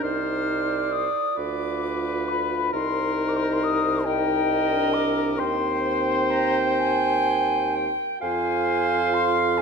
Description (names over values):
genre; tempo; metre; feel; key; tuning
classical, slow romantic movement for wind quintet; 44 BPM (dotted quarters); 6/8; uneven beats, rubato; C minor from 5.4 s; A4 = 440 Hz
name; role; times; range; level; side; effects
mellow concert flute; melody; 0.0-9.6 s; G5 to F6; -26 LUFS; left 7 dB; none
warm oboe; second line; 0.0-9.6 s; Bb4 to C5; -30 LUFS; left 4 dB; none
mellow French horn; accompaniment; 0.0-9.6 s; C4 to F4; -29 LUFS; right 1 dB; none
mellow clarinet; accompaniment; 0.0-9.6 s; C5 to G5; -27 LUFS; right 8 dB; none
dark bassoon; bass; 0.0-9.6 s; C2 to F2; -28 LUFS; right 2 dB; none
room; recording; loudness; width
moderate scoring stage reverb, RT60 1.5 s; dark, warm production; -21 LUFS; side -5 dB against mid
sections
0.0-9.6 A section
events
none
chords
0.0 Cm; 1.4 Dm6; 2.7 Cm7; 5.4 Cm/Eb; 8.2 Fm